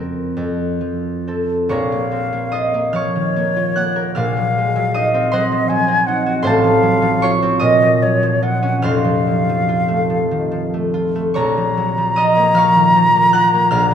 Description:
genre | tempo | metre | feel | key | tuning
classical, romantic duo for flute and harp | 43-55 BPM (dotted quarters) | 6/8 | rubato | Bb minor | A4 = 441 Hz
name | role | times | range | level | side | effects
concert harp | accompaniment | 0.0-13.9 s | F1 to Gb6 | -16 LUFS | right 1 dB | none
mellow silver concert flute | melody | 1.7-13.9 s | Db5 to Bb5 | -17 LUFS | left 1 dB | none
room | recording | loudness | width
moderate scoring stage reverb, RT60 1.8 s | minimal, uncompressed stereo recording | -14 LUFS | side -8 dB against mid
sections
0.0-1.7 A section; 1.7-13.9 B section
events
none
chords
0.3 F; 1.7 Bbm; 4.2 Cm7b5/Bb; 6.4 F/A; 7.6 Bbm; 8.8 F; 11.3 Bbm

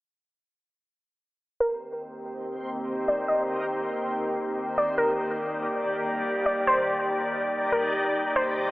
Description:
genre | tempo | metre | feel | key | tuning
hip hop | 142 BPM | 4/4 | half-time | C minor | A4 = 440 Hz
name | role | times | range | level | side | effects
warbly dusty pluck | melody | 1.6-8.7 s | Bb4 to Eb5 | -26 LUFS | equal | chorus, low-pass filter, digital delay
glassy FM pad | sustained chords | 2.0-8.7 s | Eb3 to D5 | -28 LUFS | equal | ensemble chorus, built-in reverb, low-pass filter
backwards swelling texture | texture | 2.6-8.7 s | G3 to D5 | -33 LUFS | equal | built-in reverb
room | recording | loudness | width
wet lush hall reverb, RT60 2.4 s | telephone sound | -24 LUFS | side -18 dB against mid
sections
1.6-8.7 A section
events
filter sweep 1.6-8.7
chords
1.6 Cm7; 5.0 Ebmaj7

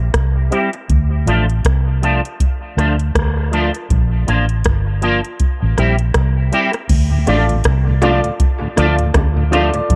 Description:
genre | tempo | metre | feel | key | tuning
dub reggae | 80 BPM | 4/4 | swing 57% on 16ths | D minor | A4 = 442 Hz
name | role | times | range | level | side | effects
vintage muted fingered electric bass | bass | 0.0-10.0 s | G1 to D2 | -18 LUFS | equal | none
soft vintage rhythm box | drums | 0.1-10.0 s | crash cymbal, hi-hat, kick drum, rim click | -20 LUFS | equal | none
electric guitar with an envelope filter | accompaniment | 0.5-9.8 s | F3 to G4 | -22 LUFS | equal | ensemble chorus, low-pass filter, dub echo
mellow tonewheel organ | accompaniment | 7.1-9.8 s | D2 to F4 | -25 LUFS | equal | slow rotary speaker, dub echo
warm grand piano | stabs | 7.3-9.9 s | F4 to D5 | -23 LUFS | equal | low-pass filter, dub echo
bongos | percussion | 7.3-9.7 s | none | -29 LUFS | equal | none
room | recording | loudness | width
light reverb, digital ambience | none | -16 LUFS | mono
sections
0.0-6.9 A section; 6.9-10.0 B section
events
break 0.0-6.9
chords
0.0 C; 0.9 Dm; 3.9 Bb; 5.4 C; 6.9 Dm

